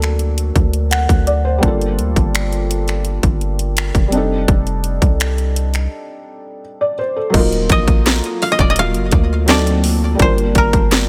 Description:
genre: contemporary R&B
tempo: 84 BPM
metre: 4/4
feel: straight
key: unclear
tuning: A4 = 440 Hz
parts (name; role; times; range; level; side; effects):
- felt-muted upright piano; accompaniment; 0.0-11.1 s; F#3 to F#5; -23 LUFS; equal; none
- long sustained 808-style bass; bass; 0.0-11.1 s; Eb1 to D2; -20 LUFS; equal; none
- trap drum kit; drums; 0.0-11.1 s; crash cymbal, finger snaps, hi-hat, kick drum, snare drum; -18 LUFS; equal; none
- ethereal airy pad; sustained chords; 8.3-11.1 s; Gb3 to A5; -28 LUFS; equal; none
- koto; melody; 7.7-11.1 s; Bb4 to F5; -22 LUFS; equal; digital delay
- soft round pluck; texture; 8.1-10.3 s; A5 to Bb5; -35 LUFS; equal; none
room: little or no reverb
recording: none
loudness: -16 LUFS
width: mono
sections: 0.0-7.3 A section; 7.3-11.1 B section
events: break 5.9-7.3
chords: 0.0 D7b13; 1.6 Gm9; 4.1 F13; 7.3 Ebmadd9; 9.5 D7b9; 10.2 Gm9

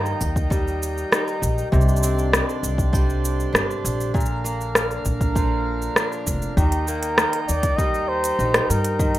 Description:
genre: folktronica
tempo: 99 BPM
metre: 4/4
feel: straight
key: Eb major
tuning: A4 = 436 Hz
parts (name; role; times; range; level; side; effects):
- pedal harmonium; sustained chords; 0.0-9.2 s; D3 to G5; -29 LUFS; right 2 dB; stereo widening
- picked acoustic archtop guitar; arpeggios; 0.0-9.2 s; Bb2 to Eb4; -28 LUFS; left 1 dB; tape echo
- upright bass; bass; 0.0-9.2 s; F1 to G2; -24 LUFS; equal; none
- organic electronic drum kit; drums; 0.1-9.2 s; hi-hat, rim click, shaker; -22 LUFS; equal; none
- electronic kick drum; drums; 0.2-9.1 s; none; -22 LUFS; equal; none
- mellow flugelhorn; melody; 6.6-9.2 s; G4 to Eb5; -24 LUFS; equal; vintage 12-bit sampler grit, tape echo
room: light reverb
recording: rough home demo mix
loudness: -19 LUFS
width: side -15 dB against mid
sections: 0.0-9.2 A section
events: none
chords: 0.0 Eb; 1.7 Csus2; 4.1 Bb; 6.6 Eb

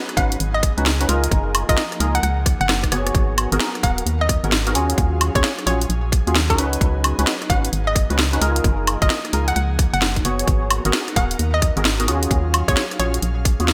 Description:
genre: UK garage, two-step garage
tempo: 131 BPM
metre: 4/4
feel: swing 64% on 16ths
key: G# dorian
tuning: A4 = 440 Hz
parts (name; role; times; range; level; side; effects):
- airy breathy pad; sustained chords; 0.0-13.7 s; E#3 to E#5; -36 LUFS; equal; chorus, sidechain pumping
- percussive organ stab; stabs; 0.0-13.7 s; B3 to C#5; -27 LUFS; equal; ensemble chorus, cassette tape, digital delay
- garage drum kit; drums; 0.1-13.7 s; hi-hat, rim click, snare drum, woodblock; -24 LUFS; equal; gated reverb
- hollow square pluck; melody; 0.2-13.2 s; A#4 to F#5; -27 LUFS; equal; chorus, digital delay
- organ-like FM bass; bass; 0.2-13.7 s; D#1 to D#2; -24 LUFS; equal; tube saturation
- electronic kick drum; drums; 0.2-13.6 s; none; -22 LUFS; equal; none
room: light reverb, digital ambience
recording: bright 1980s-style digital production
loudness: -19 LUFS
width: mono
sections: 0.0-13.7 A section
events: drum fill 2.5-3.1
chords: 0.0 C#9sus4; 1.3 F#maj13; 3.1 G#m9; 4.8 D#m11; 6.6 C#9sus4; 8.6 F#maj13; 10.5 G#m9; 12.1 D#m11

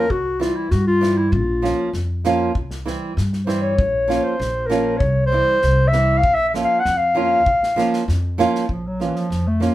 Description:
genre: balkan folk, Balkan wedding band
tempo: 98 BPM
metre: 2/4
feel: straight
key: unclear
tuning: A4 = 440 Hz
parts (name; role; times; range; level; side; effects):
- mellow clarinet; melody; 0.0-9.7 s; E3 to Gb5; -19 LUFS; left 1 dB; none
- nylon-string guitar; accompaniment; 0.0-9.7 s; E3 to F4; -21 LUFS; right 4 dB; none
- upright bass; bass; 0.0-9.7 s; Bb1 to G2; -22 LUFS; equal; none
- natural country drum kit; percussion; 0.1-9.7 s; kick drum, snare drum; -26 LUFS; equal; none
room: moderate studio reverb, RT60 0.6 s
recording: band playing live in one room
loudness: -16 LUFS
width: side -14 dB against mid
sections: 0.0-8.7 A section; 8.7-9.7 B section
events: clarinet solo 0.0-8.7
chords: 0.1 C; 1.3 Bbm; 2.6 C; 3.8 Bbm; 5.0 C; 6.2 Bbm

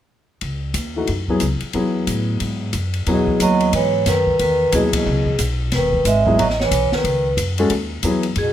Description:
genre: modal jazz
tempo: 181 BPM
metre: 4/4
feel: swing 62% on 8ths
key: C# minor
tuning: A4 = 439 Hz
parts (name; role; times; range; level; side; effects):
- upright bass; bass; 0.4-8.5 s; E1 to A2; -22 LUFS; equal; none
- open jazz drum kit; drums; 0.4-8.5 s; hi-hat, kick drum, ride cymbal, snare drum; -26 LUFS; left 2 dB; none
- warm grand piano; accompaniment; 1.0-8.2 s; E3 to A4; -21 LUFS; left 2 dB; none
- vibraphone with medium mallets; melody; 3.1-8.5 s; G#4 to E5; -19 LUFS; right 1 dB; none
- warm bass clarinet; second line; 3.1-8.5 s; B2 to G#3; -22 LUFS; right 4 dB; none
room: light reverb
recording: none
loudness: -16 LUFS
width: side -11 dB against mid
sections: 0.4-3.1 A section; 3.1-8.5 B section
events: band accent 4.9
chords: 0.4 C#m11

